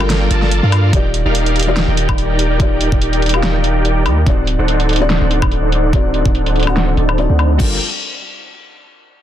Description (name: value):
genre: future bass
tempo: 144 BPM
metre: 4/4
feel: swing 55% on 16ths, half-time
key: G minor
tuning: A4 = 440 Hz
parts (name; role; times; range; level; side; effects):
- felt-muted upright piano; accompaniment; 0.0-7.8 s; D3 to A5; -22 LUFS; left 5 dB; sidechain pumping, dub echo
- dense compressed supersaw; riff; 0.0-7.8 s; Eb4 to A5; -19 LUFS; right 1 dB; sidechain pumping, low-pass filter, dub echo
- long sustained 808-style bass; bass; 0.0-7.8 s; D1 to G2; -16 LUFS; equal; sidechain pumping
- pop drum kit; drums; 0.0-7.7 s; crash cymbal, hi-hat, snare drum, woodblock; -21 LUFS; left 1 dB; overdrive, low-pass filter on hats, low-pass filter on perc, low-pass filter on snare, low-pass filter on cymbals, low-pass filter on room
- electronic kick drum; drums; 0.9-7.7 s; none; -15 LUFS; equal; overdrive
room: little or no reverb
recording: dense, heavily limited modern master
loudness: -12 LUFS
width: side -11 dB against mid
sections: 0.0-7.6 A section; 7.6-9.2 B section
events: filter sweep on supersaw synth 0.0-7.6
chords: 0.0 Gm9; 0.9 Ebmaj7; 4.3 D7b9; 7.6 Gm9